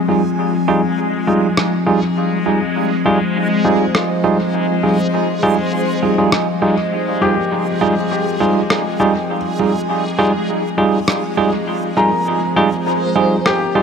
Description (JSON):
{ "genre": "ambient dub", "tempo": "101 BPM", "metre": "4/4", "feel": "straight", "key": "F minor", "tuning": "A4 = 440 Hz", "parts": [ { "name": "warbly tape-like pad", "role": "sustained chords", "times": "0.0-13.8 s", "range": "F3 to Eb5", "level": "-20 LUFS", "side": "left 2 dB", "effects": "chorus, built-in reverb" }, { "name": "backwards swelling texture", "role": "texture", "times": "0.0-13.8 s", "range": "Ab3 to Ab5", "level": "-23 LUFS", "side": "left 1 dB", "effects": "built-in reverb" }, { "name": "bell-like tine electric piano", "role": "stabs", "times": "0.1-13.8 s", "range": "G3 to Ab4", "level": "-17 LUFS", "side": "right 2 dB", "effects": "medium stereo tremolo, low-pass filter, dub echo" }, { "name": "electronic rim click", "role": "drums", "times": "1.6-13.6 s", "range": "none", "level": "-21 LUFS", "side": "equal", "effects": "overdrive, dub echo" }, { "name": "felt-muted upright piano", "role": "arpeggios", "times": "7.2-13.8 s", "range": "G4 to Bb5", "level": "-22 LUFS", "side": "left 3 dB", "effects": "dub echo" } ], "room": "moderate huge ambient reverb, RT60 9.0 s", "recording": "none", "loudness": "-14 LUFS", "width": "side -6 dB against mid", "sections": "0.0-13.8 A section", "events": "none", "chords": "0.0 Fm9" }